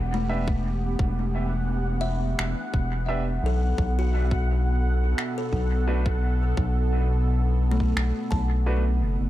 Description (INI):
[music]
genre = ambient dub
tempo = 86 BPM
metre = 4/4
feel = straight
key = E minor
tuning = A4 = 440 Hz
[part]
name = airy breathy pad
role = sustained chords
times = 0.0-9.3 s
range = B2 to F#5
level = -31 LUFS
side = right 2 dB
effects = chorus
[part]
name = round analog bass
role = bass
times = 0.0-9.3 s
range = E1 to B1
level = -24 LUFS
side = equal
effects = none
[part]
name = bubbling stepped-filter texture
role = texture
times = 0.0-9.3 s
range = F#5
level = -37 LUFS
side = left 1 dB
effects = chorus, built-in reverb
[part]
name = buzzing kalimba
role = arpeggios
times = 0.1-9.3 s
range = A3 to A5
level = -34 LUFS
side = left 3 dB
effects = dub echo
[part]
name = bright upright piano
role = stabs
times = 0.3-8.8 s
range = A3 to E5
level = -36 LUFS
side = right 1 dB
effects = dub echo
[part]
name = electronic kick drum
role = drums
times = 0.5-8.5 s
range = none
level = -26 LUFS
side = equal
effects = overdrive
[part]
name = electronic finger snaps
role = drums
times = 2.4-8.1 s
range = none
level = -32 LUFS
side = right 1 dB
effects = overdrive, dub echo
[sound]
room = little or no reverb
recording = none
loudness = -22 LUFS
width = side -14 dB against mid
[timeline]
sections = 0.0-9.3 A section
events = none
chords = 0.0 Em7; 3.8 Bm7